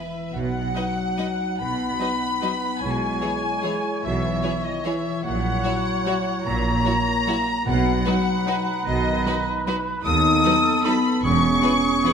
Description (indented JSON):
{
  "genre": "classical",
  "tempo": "149 BPM",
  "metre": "3/4",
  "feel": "uneven beats, rubato",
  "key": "B major",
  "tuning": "A4 = 444 Hz",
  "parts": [
    { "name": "warm symphonic violin section", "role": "melody", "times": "0.0-12.1 s", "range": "D#5 to D#6", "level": "-27 LUFS", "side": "left 3 dB", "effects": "none" },
    { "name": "bright symphonic violin section", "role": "second line", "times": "0.0-12.1 s", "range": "F#4 to D#5", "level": "-33 LUFS", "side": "left 2 dB", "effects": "none" },
    { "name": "concert flute", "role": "second line", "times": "0.0-12.1 s", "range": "D#5 to D#6", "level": "-28 LUFS", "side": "left 3 dB", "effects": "none" },
    { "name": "dark clarinet", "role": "second line", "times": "0.0-12.1 s", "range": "B3 to E4", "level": "-31 LUFS", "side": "equal", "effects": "none" },
    { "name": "mellow French horn section", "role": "sustained chords", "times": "0.0-12.1 s", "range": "D#3 to D#4", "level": "-27 LUFS", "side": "left 2 dB", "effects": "none" },
    { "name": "mellow oboe", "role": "second line", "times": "0.3-12.1 s", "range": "G#4 to F#5", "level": "-30 LUFS", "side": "right 2 dB", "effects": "none" },
    { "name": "rich studio double bass section", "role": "bass", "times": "0.3-11.6 s", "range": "E1 to D#2", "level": "-29 LUFS", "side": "right 4 dB", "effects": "none" },
    { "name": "rich symphonic cello section", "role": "bass", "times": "0.3-11.6 s", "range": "D#2 to B2", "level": "-29 LUFS", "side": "right 5 dB", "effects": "none" },
    { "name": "rich symphonic viola section", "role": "accompaniment", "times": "0.7-12.1 s", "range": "E3 to E4", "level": "-31 LUFS", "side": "right 2 dB", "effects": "none" },
    { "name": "timpani", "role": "percussion", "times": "7.7-8.2 s", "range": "B2", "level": "-32 LUFS", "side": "right 2 dB", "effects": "none" }
  ],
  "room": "wet scoring stage reverb, RT60 1.6 s",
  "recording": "none",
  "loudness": "-20 LUFS",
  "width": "side -7 dB against mid",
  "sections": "0.3-12.1 A section",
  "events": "none",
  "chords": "0.3 B; 2.8 C#m7/B; 5.2 F#7/A#; 7.7 B; 10.1 B7/D#; 11.2 E"
}